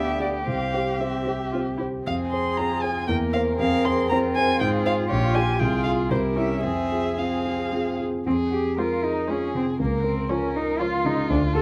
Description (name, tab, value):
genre	quick classical-period movement for piano quintet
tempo	109-122 BPM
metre	3/4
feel	rubato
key	F minor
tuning	A4 = 440 Hz
part	muted violin	melody	0.0-11.2 s	C5 to C6	-30 LUFS	equal	none
part	muted cello	second line	0.0-11.6 s	Bb3 to Bb4	-32 LUFS	equal	none
part	muted violin	second line	0.0-11.6 s	F4 to Bb4	-32 LUFS	equal	none
part	dark concert grand piano	accompaniment	0.0-11.6 s	Bb1 to F5	-27 LUFS	equal	none
part	muted viola	accompaniment	0.0-11.2 s	F3 to G4	-34 LUFS	equal	none
room	light reverb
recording	close, detailed microphones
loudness	-24 LUFS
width	mono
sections	0.0-8.3 A section; 8.3-11.6 B section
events	none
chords	0.5 C; 2.0 Fm; 3.1 C7/E; 3.6 Fm; 4.6 Fm/Ab; 5.1 Gm7b5/Bb; 5.6 Fm/C; 6.1 C7; 6.6 Fm; 9.8 Bbm/Db